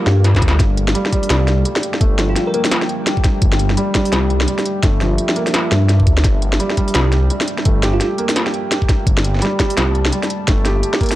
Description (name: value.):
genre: half-time drum and bass.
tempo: 170 BPM.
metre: 4/4.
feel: swing 60% on 16ths, half-time.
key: unclear.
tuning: A4 = 440 Hz.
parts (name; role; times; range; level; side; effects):
deep dark ambient pad; sustained chords; 0.0-11.2 s; G3 to A5; -26 LUFS; equal; chorus, built-in reverb, sidechain pumping.
felt-muted upright piano; arpeggios; 0.0-11.2 s; G2 to G4; -22 LUFS; right 1 dB; analog delay.
dark detuned saw bass; bass; 0.1-10.8 s; G1 to G2; -16 LUFS; equal; none.
industrial drum kit; drums; 0.1-11.2 s; hi-hat, snare drum; -20 LUFS; equal; none.
electronic kick drum; drums; 0.3-11.1 s; none; -16 LUFS; equal; none.
bell-like FM electric piano; melody; 2.3-2.6, 7.9-8.1 s; F4 to Bb4; -24 LUFS; equal; chorus, phaser, analog delay.
room: digital ambience.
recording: dry, gritty hardware recording, transformer saturation.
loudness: -14 LUFS.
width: side -15 dB against mid.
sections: 0.0-11.2 A section.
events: drum fill 0.2-0.6.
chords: 0.0 G5.